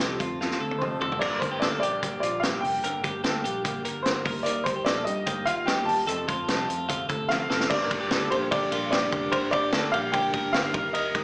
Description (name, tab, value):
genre	jangly indie pop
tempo	148 BPM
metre	4/4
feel	straight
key	G minor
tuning	A4 = 440 Hz
part	clear upright piano	melody	0.0-11.2 s	A4 to A5	-28 LUFS	equal	slapback echo, plate reverb
part	fingerpicked steel-string acoustic guitar	accompaniment	0.0-11.2 s	F2 to Eb4	-34 LUFS	equal	slapback echo
part	twelve-string electric guitar	arpeggios	0.0-11.2 s	F4 to Bb4	-31 LUFS	equal	plate reverb
part	vintage muted fingered electric bass	bass	0.0-11.2 s	F1 to G2	-39 LUFS	equal	none
part	vintage drum kit	drums	0.0-11.2 s	crash cymbal, hi-hat, kick drum, ride cymbal, snare drum, toms	-28 LUFS	equal	none
part	mellow reed electric piano	accompaniment	7.7-11.2 s	D4 to C5	-33 LUFS	equal	fast tremolo, slapback echo
room	moderate club ambience, RT60 0.5 s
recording	live gig heard through the venue's PA, club reverb, small speaker sound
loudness	-23 LUFS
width	side -37 dB against mid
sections	0.0-1.2 A section; 1.2-7.7 B section; 7.7-11.2 C section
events	drum fill 0.4-1.2, 7.3-7.7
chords	0.0 F; 1.2 Gm; 4.3 Eb; 6.1 F; 7.7 Gm